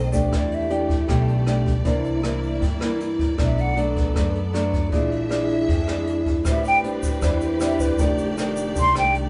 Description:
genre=bossa nova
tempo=156 BPM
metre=4/4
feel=straight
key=E minor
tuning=A4 = 440 Hz
part: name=nylon-string guitar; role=accompaniment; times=0.0-9.3 s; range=E#2 to G4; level=-26 LUFS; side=equal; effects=none
part: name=warm symphonic string section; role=sustained chords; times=0.0-9.3 s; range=A3 to E5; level=-33 LUFS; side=equal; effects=none
part: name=upright bass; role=bass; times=0.0-9.3 s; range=F1 to G2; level=-29 LUFS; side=equal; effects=none
part: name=jazz brush drum kit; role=drums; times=0.1-9.2 s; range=hi-hat, kick drum, rim click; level=-27 LUFS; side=equal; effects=none
part: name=egg shaker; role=percussion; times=0.1-0.3, 6.5-9.1 s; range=none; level=-43 LUFS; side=equal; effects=none
part: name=breathy hollow jazz flute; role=melody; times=0.4-0.7, 3.4-3.8, 6.5-9.1 s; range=B4 to C6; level=-24 LUFS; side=equal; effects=none
room=moderate studio reverb, RT60 0.6 s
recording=band playing live in one room, nothing above 10.6 kHz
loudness=-22 LUFS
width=mono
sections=0.3-9.3 A section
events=flute solo 0.3-9.3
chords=0.3 Em7; 1.9 C9; 3.4 Bm7; 4.9 A#7#11; 6.5 Am11; 8.0 F13

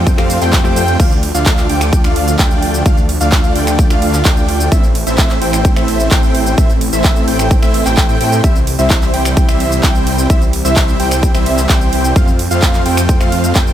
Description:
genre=EDM, festival progressive house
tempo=129 BPM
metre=4/4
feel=straight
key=D minor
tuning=A4 = 440 Hz
part: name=lush unison pad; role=sustained chords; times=0.0-13.7 s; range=E3 to D4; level=-24 LUFS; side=equal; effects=chorus, phaser, sidechain pumping
part: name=wide unison lead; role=arpeggios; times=0.0-13.7 s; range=E5 to G5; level=-20 LUFS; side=equal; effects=sidechain pumping, dub echo
part: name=supersaw chords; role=riff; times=0.0-13.7 s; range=G3 to G5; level=-18 LUFS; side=right 1 dB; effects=sidechain pumping, dub echo
part: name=detuned saw bass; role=bass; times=0.0-13.7 s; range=A1 to A2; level=-18 LUFS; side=equal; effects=sidechain pumping
part: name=big-room dance drum kit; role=drums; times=0.1-13.7 s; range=cabasa, crash cymbal, finger snaps, handclaps, hi-hat, ride cymbal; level=-20 LUFS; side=right 1 dB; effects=none
part: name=electronic kick drum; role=drums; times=0.1-13.6 s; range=none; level=-12 LUFS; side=equal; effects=overdrive
part: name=direct-recorded clean electric guitar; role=accompaniment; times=0.2-0.8 s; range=F3 to G4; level=-26 LUFS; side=left 4 dB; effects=none
room=little or no reverb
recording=none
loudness=-10 LUFS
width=side -11 dB against mid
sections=1.0-13.7 A section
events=drop 1.0-13.7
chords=0.0 F; 1.0 Dm; 4.7 Am; 8.4 C; 12.2 F

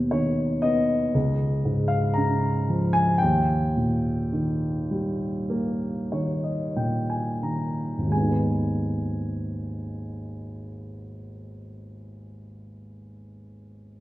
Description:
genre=classical, lyrical solo piano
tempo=42-60 BPM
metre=4/4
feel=rubato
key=G# minor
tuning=A4 = 438 Hz
part: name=dark grand piano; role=solo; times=0.0-14.0 s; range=G#1 to A#5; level=-24 LUFS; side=equal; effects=none
room=wet recital hall reverb, RT60 1.7 s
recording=recorded in a church or concert hall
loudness=-22 LUFS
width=side -16 dB against mid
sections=0.0-8.1 A section; 8.1-13.6 B section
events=slowing down 0.0-8.1; grand piano fill 5.5-8.1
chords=0.0 Badd9/D#; 1.1 C#; 3.2 D#; 8.1 G#m

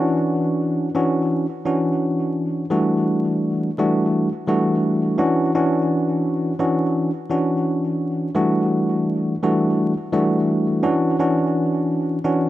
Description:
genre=hip hop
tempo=85 BPM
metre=4/4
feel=swing 54% on 16ths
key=unclear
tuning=A4 = 440 Hz
part: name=bell-like tine electric piano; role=solo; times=0.0-12.5 s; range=E3 to F#4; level=-18 LUFS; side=equal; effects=medium stereo tremolo, cassette tape, ping-pong delay
room=wet studio ambience, RT60 0.5 s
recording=rough home demo mix, vinyl crackle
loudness=-18 LUFS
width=side -14 dB against mid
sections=0.0-12.5 A section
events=none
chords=0.0 Dmaj9; 2.7 Em11; 5.2 Dmaj9; 8.4 Em11; 10.8 Dmaj9

